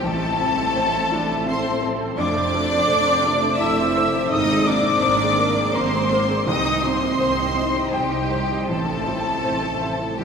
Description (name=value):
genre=cinematic, emotional film score for orchestra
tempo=84 BPM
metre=3/4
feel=rubato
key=unclear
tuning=A4 = 443 Hz
part: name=warm symphonic violin section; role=melody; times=0.0-10.2 s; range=G5 to E6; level=-26 LUFS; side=left 3 dB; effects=none
part: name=flute section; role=second line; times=0.0-10.2 s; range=G5 to E6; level=-25 LUFS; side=equal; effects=none
part: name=rich studio violin section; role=second line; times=0.0-10.2 s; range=G4 to E5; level=-27 LUFS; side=left 1 dB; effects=none
part: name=dark studio viola section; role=accompaniment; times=0.0-10.2 s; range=A3 to Eb5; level=-30 LUFS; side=equal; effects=none
part: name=felt-muted upright piano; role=accompaniment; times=0.0-10.2 s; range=A1 to Bb5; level=-28 LUFS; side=equal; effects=none
part: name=concert harp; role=arpeggios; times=0.0-10.2 s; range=F2 to C6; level=-31 LUFS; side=left 2 dB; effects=none
part: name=rich studio cello section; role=bass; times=0.0-10.2 s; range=G3 to E4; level=-27 LUFS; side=right 3 dB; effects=none
part: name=mellow French horn section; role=sustained chords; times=0.1-10.2 s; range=A3 to E4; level=-29 LUFS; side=left 2 dB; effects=none
part: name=rich studio double bass section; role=bass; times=0.1-10.2 s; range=F1 to C2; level=-29 LUFS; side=right 3 dB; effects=none
part: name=timpani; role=percussion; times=6.5-10.2 s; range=none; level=barely audible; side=none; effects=none
room=wet cathedral reverb, RT60 5.9 s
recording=recorded in a church or concert hall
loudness=-18 LUFS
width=side -6 dB against mid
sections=0.0-10.2 A section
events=none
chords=0.0 Am; 2.2 F; 4.3 Abadd9; 6.5 Cm; 8.7 Am